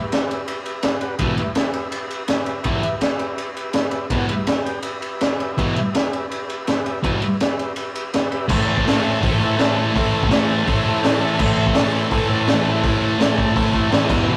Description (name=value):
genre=garage rock duo or trio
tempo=165 BPM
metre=4/4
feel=straight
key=unclear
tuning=A4 = 440 Hz
part: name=overdriven combo organ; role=sustained chords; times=0.0-14.4 s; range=G4 to A5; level=-30 LUFS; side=equal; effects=none
part: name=crunchy breakbeat drum kit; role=drums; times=0.1-14.2 s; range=crash cymbal, hi-hat, kick drum, ride cymbal, snare drum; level=-23 LUFS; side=equal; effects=none
part: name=thick fuzz guitar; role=riff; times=1.2-14.4 s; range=E2 to A3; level=-22 LUFS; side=equal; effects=distortion
room=moderate stone room reverb, RT60 1.1 s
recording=rough rehearsal-room recording, warm saturation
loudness=-20 LUFS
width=mono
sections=0.0-8.5 A section; 8.5-14.4 B section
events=transistor combo organ fill 10.7-11.4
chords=0.0 Em; 8.5 Am